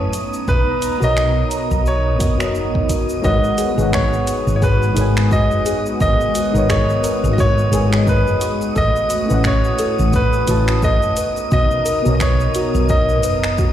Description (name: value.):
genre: sunset chillout.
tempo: 87 BPM.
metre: 4/4.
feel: swing 58% on 16ths.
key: G# minor.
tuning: A4 = 440 Hz.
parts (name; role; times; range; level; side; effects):
bright grand piano; melody; 0.0-13.7 s; B4 to D#5; -21 LUFS; equal; ping-pong delay.
mellow FM electric piano; accompaniment; 0.0-13.2 s; G#3 to A5; -23 LUFS; left 1 dB; chorus, auto-pan, digital delay.
airy breathy pad; sustained chords; 0.0-13.7 s; F#3 to A#5; -25 LUFS; equal; chorus, phaser.
woody fretless electric bass; bass; 0.0-13.7 s; F#1 to B1; -18 LUFS; equal; none.
wind-like tuned noise texture; texture; 0.0-13.7 s; D#6; -30 LUFS; left 1 dB; built-in reverb.
deep house drum kit; drums; 0.1-13.7 s; cabasa, finger snaps, hi-hat; -28 LUFS; right 1 dB; studio reverb.
electronic kick drum; drums; 0.5-13.7 s; none; -19 LUFS; equal; studio reverb.
soft round pluck; arpeggios; 3.2-13.7 s; F#4 to B4; -28 LUFS; left 2 dB; chorus, vintage 12-bit sampler grit, digital delay.
room: light reverb.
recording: played on a big sound system in a bare room, large studio reverb.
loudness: -14 LUFS.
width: side -11 dB against mid.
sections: 0.0-3.2 A section; 3.2-13.7 B section.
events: filter sweep on FM electric piano 0.0-3.2.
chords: 0.1 Bmaj9; 3.2 G#m11; 8.8 A69; 11.2 Bmaj9.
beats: | 0.48 1.17 1.86 2.55 | 3.24 3.93 4.62 5.31 | 6.00 6.69 7.38 8.07 | 8.76 9.45 10.14 10.83 | 11.52 12.21 12.90 13.59.